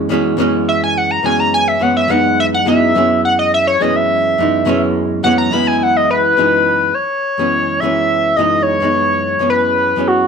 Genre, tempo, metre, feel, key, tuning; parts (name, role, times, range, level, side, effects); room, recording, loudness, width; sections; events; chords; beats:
progressive instrumental, progressive; 210 BPM (eighths); 9/8; straight; A4 = 439 Hz
archtop guitar, miked and amplified; accompaniment; 0.0-10.3 s; F#2 to E4; -16 LUFS; equal; double-tracked left and right, plate reverb
sync lead; melody; 0.7-10.3 s; F#4 to B5; -14 LUFS; equal; chorus, plate reverb
wet studio reverb, RT60 0.5 s; -12 LUFS; side -6 dB against mid
0.0-7.0 A section; 7.0-10.3 B section
analog synth lead solo 0.0-7.0
0.0 F#7sus4
0.09 0.38 0.67 0.95 1.24 1.52 | 1.81 2.10 2.38 2.67 2.95 3.24 3.52 3.81 4.10 | 4.38 4.67 4.95 5.24 5.53 5.81 6.10 6.38 6.67 | 6.96 7.24 7.53 7.82 8.10 8.39 8.68 8.96 9.25 | 9.54 9.82 10.11